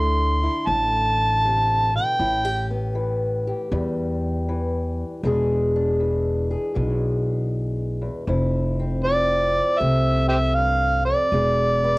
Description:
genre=acoustic country blues, solo or duo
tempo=79 BPM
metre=4/4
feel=swing 66% on 8ths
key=A minor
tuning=A4 = 438 Hz
part: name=overdriven harmonica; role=melody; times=0.0-2.7, 9.0-12.0 s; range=G4 to C6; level=-20 LUFS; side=right 1 dB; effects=cassette tape
part: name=fingerpicked old ladder-braced acoustic guitar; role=accompaniment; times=0.0-12.0 s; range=E2 to G#4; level=-26 LUFS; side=left 1 dB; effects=cassette tape
part: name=upright bass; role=bass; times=0.0-12.0 s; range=E1 to E2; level=-24 LUFS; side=equal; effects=tube saturation
room=light reverb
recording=home recording on cassette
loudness=-19 LUFS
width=side -23 dB against mid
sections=0.0-12.0 A section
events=none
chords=0.0 D7sus2; 2.2 Asus2; 5.2 E7; 8.3 Fmaj7; 11.3 E7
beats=0.68 1.44 | 2.20 2.96 3.72 4.48 | 5.24 6.00 6.76 7.52 | 8.28 9.04 9.80 10.56 | 11.32

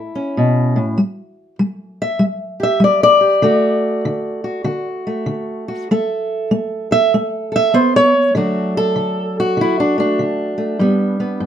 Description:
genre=acoustic country blues, solo or duo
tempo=98 BPM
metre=4/4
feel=swing 64% on 8ths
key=D major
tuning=A4 = 442 Hz
part: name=fingerpicked steel-string acoustic guitar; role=solo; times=0.0-11.5 s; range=G2 to E5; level=-14 LUFS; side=equal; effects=none
room=moderate studio reverb, RT60 0.6 s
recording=minimal, uncompressed stereo recording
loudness=-14 LUFS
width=side -9 dB against mid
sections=0.0-8.3 A section; 8.3-11.5 B section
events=steel-string acoustic guitar solo 0.0-8.3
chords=0.0 A; 1.0 N.C.; 3.4 D; 5.9 A5; 8.3 D; 10.8 G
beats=0.38 | 0.99 1.61 2.22 2.83 | 3.45 4.06 4.67 5.29 | 5.90 6.51 7.12 7.74 | 8.35 8.96 9.58 10.19 | 10.81 11.42

